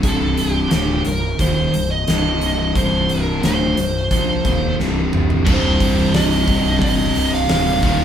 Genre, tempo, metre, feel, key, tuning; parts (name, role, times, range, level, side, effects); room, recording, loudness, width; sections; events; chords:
hard rock; 88 BPM; 4/4; straight; C dorian; A4 = 440 Hz
dark smooth lead guitar; melody; 0.0-8.0 s; G4 to F5; -21 LUFS; right 1 dB; overdrive
crunchy overdriven guitar; riff; 0.0-8.0 s; C2 to Bb3; -23 LUFS; right 4 dB
sludgy distorted guitar; riff; 0.0-8.0 s; C2 to Bb3; -23 LUFS; left 5 dB; overdrive
fuzz fingered electric bass; bass; 0.0-8.0 s; C1 to Bb1; -23 LUFS; equal; overdrive
huge arena drum kit; drums; 0.0-8.0 s; crash cymbal, hi-hat, kick drum, snare drum, toms; -20 LUFS; equal
high-gain distorted guitar; riff; 5.5-8.0 s; C2 to Eb3; -23 LUFS; right 1 dB; distortion
moderate studio reverb, RT60 0.6 s; band playing live in one room; -15 LUFS; side -9 dB against mid
0.0-5.5 A section; 5.5-8.0 B section
drum fill 4.8-5.5
0.0 Cm